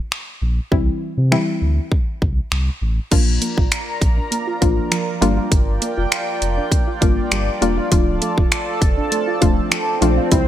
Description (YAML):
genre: dance-pop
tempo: 100 BPM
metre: 4/4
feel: straight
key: D minor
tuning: A4 = 440 Hz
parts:
  - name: pop drum kit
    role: drums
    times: 0.1-10.5 s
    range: crash cymbal, finger snaps, hi-hat, kick drum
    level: -18 LUFS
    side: equal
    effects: none
  - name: warm sub bass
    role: bass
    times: 0.4-10.5 s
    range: D1 to C3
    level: -20 LUFS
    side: equal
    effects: sidechain pumping
  - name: soft round pluck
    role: accompaniment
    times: 0.7-10.5 s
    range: E3 to F4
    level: -21 LUFS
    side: left 2 dB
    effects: chorus, sidechain pumping
  - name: chorused pulse-width pad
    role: sustained chords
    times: 3.1-10.5 s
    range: E4 to Bb5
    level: -24 LUFS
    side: right 1 dB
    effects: sidechain pumping
  - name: soft round pluck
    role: arpeggios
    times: 3.1-10.4 s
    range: E3 to F4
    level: -28 LUFS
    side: right 4 dB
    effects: chorus, sidechain pumping, digital delay
  - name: swell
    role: sound effects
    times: 8.9-10.5 s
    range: none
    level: -26 LUFS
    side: right 3 dB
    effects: none
room: little or no reverb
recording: none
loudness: -16 LUFS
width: side -12 dB against mid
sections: 0.0-3.1 A section; 3.1-10.5 B section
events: swell 8.9-10.5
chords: 0.0 N.C.; 0.7 C; 3.1 Bb; 5.2 Gm7; 7.9 Dm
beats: 0.12 | 0.72 1.32 1.92 2.52 | 3.12 3.72 4.32 4.92 | 5.52 6.12 6.72 7.32 | 7.92 8.52 9.12 9.72 | 10.32